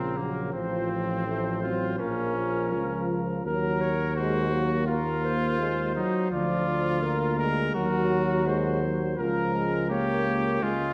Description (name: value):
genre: classical, brass quintet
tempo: 83 BPM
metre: 4/4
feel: rubato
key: unclear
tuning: A4 = 440 Hz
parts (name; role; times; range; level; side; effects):
- clear trumpet; melody; 0.0-10.9 s; Ab4 to D5; -36 LUFS; equal; none
- bright trumpet; second line; 0.0-10.9 s; Bb3 to Bb4; -33 LUFS; equal; none
- warm French horn; accompaniment; 0.0-10.9 s; F3 to C4; -35 LUFS; equal; none
- warm trombone; accompaniment; 0.0-10.9 s; Db3 to Bb3; -34 LUFS; equal; none
- warm tuba; bass; 0.0-10.9 s; A1 to Eb2; -32 LUFS; equal; none
room: wet concert hall reverb, RT60 1.7 s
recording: none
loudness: -27 LUFS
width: mono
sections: 0.0-10.9 A section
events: none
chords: 0.0 Bbm; 0.5 F/A; 2.0 Bbm; 3.4 Ebm; 6.3 Bb/D; 7.7 Ebm; 9.2 Bbm/Db